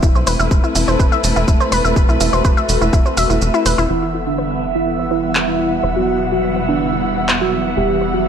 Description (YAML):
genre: melodic techno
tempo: 124 BPM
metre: 4/4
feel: straight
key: E minor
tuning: A4 = 440 Hz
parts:
  - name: warm studio string section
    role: sustained chords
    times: 0.0-8.3 s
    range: E3 to F#5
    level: -23 LUFS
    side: left 2 dB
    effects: sidechain pumping, low-pass filter
  - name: analog pluck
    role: arpeggios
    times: 0.0-8.2 s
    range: E4 to E5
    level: -21 LUFS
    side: left 1 dB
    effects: chorus, sidechain pumping, tape echo
  - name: tight sequencer bass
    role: bass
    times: 0.0-8.3 s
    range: E1 to B1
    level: -21 LUFS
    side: equal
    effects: sidechain pumping
  - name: electronic kick drum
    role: drums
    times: 0.0-3.0 s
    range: none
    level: -14 LUFS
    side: equal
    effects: small room ambience
  - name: punchy analog drum machine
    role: drums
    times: 0.0-7.4 s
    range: handclaps, hi-hat, shaker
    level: -21 LUFS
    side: right 1 dB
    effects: small room ambience
  - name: airy breathy pad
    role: texture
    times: 0.0-8.3 s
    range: G3 to E5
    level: -22 LUFS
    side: right 2 dB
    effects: chorus, phaser, sidechain pumping
  - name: wide unison lead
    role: melody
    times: 3.9-8.3 s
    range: D4 to G4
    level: -19 LUFS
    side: right 2 dB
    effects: sidechain pumping
  - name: swarming drone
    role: drone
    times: 4.9-8.3 s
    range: E2 to B2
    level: -28 LUFS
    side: equal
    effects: built-in reverb, sidechain pumping
room: light reverb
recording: none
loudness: -14 LUFS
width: side -8 dB against mid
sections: 0.0-3.9 A section; 3.9-8.3 B section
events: filter sweep on synth arpeggio sound 0.0-3.9; kick drops out 3.4-3.9; filter sweep on analog synth lead 3.9-8.3; filter sweep on string section 3.9-8.3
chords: 0.0 Am/E; 3.9 Em